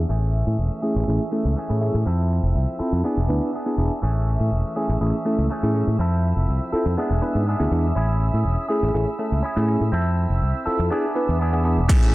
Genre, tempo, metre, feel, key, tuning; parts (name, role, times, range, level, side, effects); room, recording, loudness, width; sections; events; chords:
filtered disco house; 122 BPM; 4/4; straight; A major; A4 = 440 Hz
clear studio violin section; sustained chords; 0.0-12.1 s; E5 to E6; -35 LUFS; equal; sidechain pumping, low-pass filter
electric guitar with an envelope filter; riff; 0.0-12.1 s; E3 to A4; -29 LUFS; right 1 dB; sidechain pumping, low-pass filter
fingered electric bass; bass; 0.0-12.1 s; E1 to A2; -21 LUFS; equal; sidechain pumping, low-pass filter
bell-like tine electric piano; accompaniment; 0.8-12.1 s; A3 to B4; -24 LUFS; equal; phaser, sidechain pumping, low-pass filter
electronic kick drum; drums; 11.9-12.0 s; -15 LUFS; equal
house drum kit; drums; 11.9-12.1 s; crash cymbal, hi-hat, shaker; -29 LUFS; right 1 dB; sidechain pumping on hats, sidechain pumping on cymbals, sidechain pumping on perc
light reverb, digital ambience; dark, warm production; -19 LUFS; side -18 dB against mid
0.0-11.9 A section
filter sweep 0.0-11.9
0.1 Amaj7; 2.1 Fmaj7; 3.0 E7; 4.0 Amaj7; 6.0 Fmaj7; 7.0 E7; 8.0 Amaj7; 9.9 Fmaj7; 10.9 E7